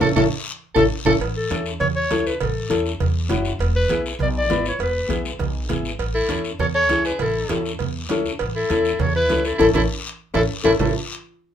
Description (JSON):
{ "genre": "latin, cumbia", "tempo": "200 BPM", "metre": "4/4", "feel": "straight", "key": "A major", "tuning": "A4 = 445 Hz", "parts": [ { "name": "mellow clarinet", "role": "melody", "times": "0.0-10.9 s", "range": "A4 to D5", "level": "-22 LUFS", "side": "left 1 dB", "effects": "none" }, { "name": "bright soprano saxophone", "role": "second line", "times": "0.0-1.1, 6.1-10.9 s", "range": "E4 to A4", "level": "-27 LUFS", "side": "right 5 dB", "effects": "none" }, { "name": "nylon-string guitar", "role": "accompaniment", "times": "0.0-10.9 s", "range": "B3 to B4", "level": "-21 LUFS", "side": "left 3 dB", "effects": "none" }, { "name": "upright bass", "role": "bass", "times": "0.0-10.9 s", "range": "E1 to E2", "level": "-26 LUFS", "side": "right 1 dB", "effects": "none" }, { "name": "congas", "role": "percussion", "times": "0.0-10.9 s", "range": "none", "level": "-28 LUFS", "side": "right 6 dB", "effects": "none" }, { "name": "guiro", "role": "percussion", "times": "0.0-10.9 s", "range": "none", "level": "-33 LUFS", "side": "left 6 dB", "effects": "none" }, { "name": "timbales and cowbell", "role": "percussion", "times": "0.0-10.9 s", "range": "none", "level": "-30 LUFS", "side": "right 6 dB", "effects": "none" } ], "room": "light reverb", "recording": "minimal, uncompressed stereo recording", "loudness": "-18 LUFS", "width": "side -9 dB against mid", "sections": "0.0-1.2 A section; 1.2-10.8 B section", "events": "band accent 0.0-1.2, 9.6-10.8; drum fill 0.6-1.2, 10.0-10.8", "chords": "0.0 A; 3.6 E; 6.0 A", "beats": "| 0.01 0.31 0.61 0.91 | 1.21 1.51 1.80 2.10 | 2.40 2.70 3.00 3.30 | 3.60 3.90 4.20 4.50 | 4.80 5.10 5.40 5.70 | 6.00 6.30 6.60 6.89 | 7.20 7.49 7.79 8.09 | 8.39 8.69 8.99 9.29 | 9.59 9.89 10.19 10.49 | 10.79" }